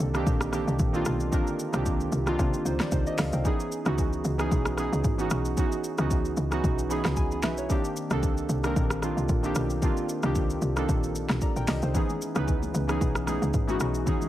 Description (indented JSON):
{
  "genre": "amapiano",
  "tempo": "113 BPM",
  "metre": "4/4",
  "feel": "swing 55% on 16ths",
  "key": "unclear",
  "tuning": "A4 = 440 Hz",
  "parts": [
    { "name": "warm analog keys", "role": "accompaniment", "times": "0.0-14.3 s", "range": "D3 to B5", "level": "-28 LUFS", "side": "right 1 dB", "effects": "chorus" },
    { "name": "woody log drum bass", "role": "bass", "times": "0.0-14.0 s", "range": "G#1 to C3", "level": "-29 LUFS", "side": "equal", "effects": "none" },
    { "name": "deep house drum kit", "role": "drums", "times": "0.0-14.3 s", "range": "hi-hat, kick drum, rim click, shaker, snare drum", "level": "-28 LUFS", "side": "equal", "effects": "none" },
    { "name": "congas", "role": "percussion", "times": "11.9-14.3 s", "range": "none", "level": "-35 LUFS", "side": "left 2 dB", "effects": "none" }
  ],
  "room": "little or no reverb",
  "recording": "none",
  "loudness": "-24 LUFS",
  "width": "side -13 dB against mid",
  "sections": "0.0-14.3 A section",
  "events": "synth keys fill 6.6-7.7",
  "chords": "0.0 Cm9; 3.5 C#m9; 7.7 Cm9; 11.9 C#m9"
}